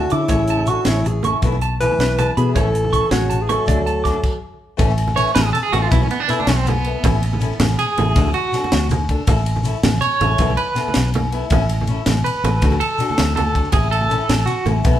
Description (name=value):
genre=highlife guitar band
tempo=107 BPM (dotted quarters)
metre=12/8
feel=straight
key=A major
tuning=A4 = 440 Hz
part: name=breathy alto saxophone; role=melody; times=0.0-4.4 s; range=E4 to B4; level=-21 LUFS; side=left 1 dB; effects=none
part: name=warm trombone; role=second line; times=0.0-4.4 s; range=C#3 to F#3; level=-29 LUFS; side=right 2 dB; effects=none
part: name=electric guitar at the edge of break-up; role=arpeggios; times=0.0-14.7 s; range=B3 to D6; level=-22 LUFS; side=right 3 dB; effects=tremolo
part: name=fingered electric bass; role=bass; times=0.0-15.0 s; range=A1 to D3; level=-20 LUFS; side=equal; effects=none
part: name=fingerpicked acoustic archtop guitar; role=accompaniment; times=0.1-15.0 s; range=E3 to A4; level=-27 LUFS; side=left 4 dB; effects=none
part: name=tight funk drum kit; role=drums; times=0.1-14.9 s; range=crash cymbal, hi-hat, kick drum, ride cymbal, snare drum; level=-22 LUFS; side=equal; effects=none
part: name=agogo bells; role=percussion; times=0.3-15.0 s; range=none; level=-30 LUFS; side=left 4 dB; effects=none
part: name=congas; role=percussion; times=0.3-15.0 s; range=none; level=-26 LUFS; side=right 4 dB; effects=none
part: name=shekere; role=percussion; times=0.3-14.9 s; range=none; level=-28 LUFS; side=left 2 dB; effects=none
room=moderate large studio reverb, RT60 1.0 s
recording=band playing live in one room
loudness=-15 LUFS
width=side -12 dB against mid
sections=0.0-4.8 A section; 4.8-15.0 B section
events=stop 4.2-4.8; clean electric guitar solo 4.8-15.0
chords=0.3 A; 1.4 Esus4/B; 2.6 A; 3.7 D; 4.8 A; 5.9 Esus4/B; 7.0 A; 8.2 D; 9.3 A; 10.4 Esus4/B; 11.5 A; 12.6 D; 13.7 A